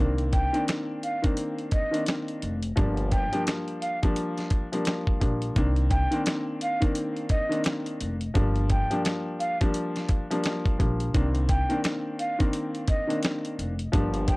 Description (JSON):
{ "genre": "hip hop, boom-bap hip-hop", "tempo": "86 BPM", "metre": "4/4", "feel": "swing 60% on 16ths", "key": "C minor", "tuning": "A4 = 440 Hz", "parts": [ { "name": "dark grand piano", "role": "accompaniment", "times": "0.0-14.4 s", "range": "Eb3 to D4", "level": "-29 LUFS", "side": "left 1 dB", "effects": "cassette tape, high-pass filter, low-pass filter" }, { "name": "upright bass", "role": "bass", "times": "0.0-14.4 s", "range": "F1 to C2", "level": "-27 LUFS", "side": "equal", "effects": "none" }, { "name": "dusty soul sampler-style drum kit", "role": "drums", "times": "0.2-14.4 s", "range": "hi-hat, kick drum, snare drum", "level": "-26 LUFS", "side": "equal", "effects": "none" }, { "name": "breathy mellow silver concert flute", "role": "melody", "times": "0.3-14.4 s", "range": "Eb5 to G5", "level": "-31 LUFS", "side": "right 1 dB", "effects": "high-pass filter, low-pass filter, tape echo" } ], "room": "little or no reverb", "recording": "dry, gritty hardware recording, cassette tape", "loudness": "-24 LUFS", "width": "side -24 dB against mid", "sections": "0.0-5.6 A section; 5.6-14.4 B section", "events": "none", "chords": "0.0 Cm9; 2.8 Gm7; 5.6 Cm9; 8.4 Gm7; 11.1 Cm9", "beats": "0.68 1.38 2.08 | 2.77 3.47 4.17 4.87 | 5.56 6.26 6.96 7.66 | 8.35 9.05 9.75 10.45 | 11.14 11.84 12.54 13.24 | 13.94" }